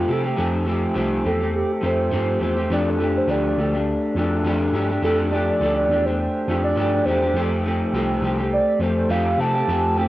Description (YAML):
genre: indie pop, bedroom pop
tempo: 103 BPM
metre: 4/4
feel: swing 55% on 16ths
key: F major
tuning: A4 = 440 Hz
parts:
  - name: hollow clarinet-like synth lead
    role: melody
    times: 0.0-10.1 s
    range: F4 to A5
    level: -23 LUFS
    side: right 2 dB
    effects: analog chorus, cassette tape, analog delay
  - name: electric guitar through a small old amp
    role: accompaniment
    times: 0.0-10.1 s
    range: F3 to G4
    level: -22 LUFS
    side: left 1 dB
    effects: lush chorus, vibrato effect
  - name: tine electric piano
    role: bass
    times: 0.0-10.1 s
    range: C2 to C3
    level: -26 LUFS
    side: equal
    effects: overdrive, fast stereo tremolo, transformer saturation
room: light reverb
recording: home recording on cassette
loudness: -19 LUFS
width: side -16 dB against mid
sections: 0.0-10.1 A section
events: soft synth lead solo 0.0-10.1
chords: 0.0 Fadd9; 2.7 Gsus2; 7.4 Fadd9